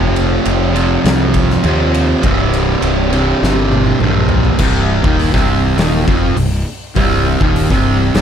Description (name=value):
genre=stoner and doom metal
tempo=102 BPM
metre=4/4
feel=straight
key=C minor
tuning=A4 = 440 Hz
part: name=fuzz guitar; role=riff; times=0.0-8.2 s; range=C2 to F3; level=-14 LUFS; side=right 1 dB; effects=distortion
part: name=fuzz fingered electric bass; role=bass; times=0.0-8.2 s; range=C1 to Eb2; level=-17 LUFS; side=equal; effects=overdrive
part: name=oversized low-tuned drum kit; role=drums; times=0.2-8.2 s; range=crash cymbal, hi-hat, kick drum, ride cymbal, snare drum, toms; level=-17 LUFS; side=equal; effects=none
room=studio reverb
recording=dark, warm production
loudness=-11 LUFS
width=side -8 dB against mid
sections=0.0-4.6 A section; 4.6-8.2 B section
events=drum fill 3.4-4.6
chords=0.0 F5; 2.2 C5; 4.6 Cm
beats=0.47 1.05 1.65 | 2.24 2.83 3.42 4.01 | 4.60 5.19 5.78 6.37 | 6.96 7.55 8.14